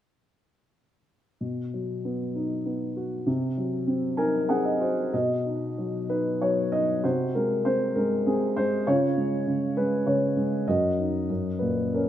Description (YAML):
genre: classical, lyrical solo piano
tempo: 97 BPM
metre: 3/4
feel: uneven beats, rubato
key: B major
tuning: A4 = 440 Hz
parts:
  - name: dark upright piano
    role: solo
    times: 1.4-12.1 s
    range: F#2 to G#5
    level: -24 LUFS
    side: equal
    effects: none
room: light reverb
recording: none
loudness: -24 LUFS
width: side -11 dB against mid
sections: 1.4-5.1 A section; 5.1-12.1 B section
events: upright piano fill 3.9-5.1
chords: 1.4 B; 3.3 Cm7b5; 5.1 B; 7.0 G#7/B#; 8.9 C#; 10.7 D#m/F#; 11.3 F#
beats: | 1.41 2.04 2.66 | 3.27 3.88 4.49 | 5.13 5.77 6.41 | 7.04 7.65 8.26 | 8.87 9.47 10.07 | 10.68 11.30 11.95